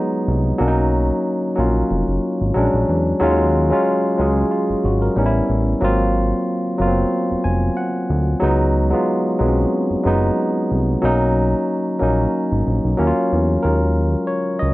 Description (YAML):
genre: R&B, neo-soul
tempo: 92 BPM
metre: 4/4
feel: swing 53% on 16ths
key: Eb minor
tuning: A4 = 439 Hz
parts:
  - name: barky tine electric piano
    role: accompaniment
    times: 0.0-14.7 s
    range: Gb3 to Ab5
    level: -18 LUFS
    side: equal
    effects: overdrive
  - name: fat analog bass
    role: bass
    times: 0.3-14.7 s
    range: F1 to Fb2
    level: -19 LUFS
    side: equal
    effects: none
room: little or no reverb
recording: none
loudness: -16 LUFS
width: side -18 dB against mid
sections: 0.0-13.6 A section; 13.6-14.7 A section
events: tine electric piano fill 7.1-8.4; tine electric piano solo 13.6-14.7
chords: 0.0 Db7sus4 (rootless); 0.6 Bmaj7; 2.5 Bb7alt; 3.2 Ebm11; 5.1 A9; 5.8 Ab13; 8.4 Db7sus4; 11.0 Bmaj7; 13.0 Ebm7; 13.6 Ebm11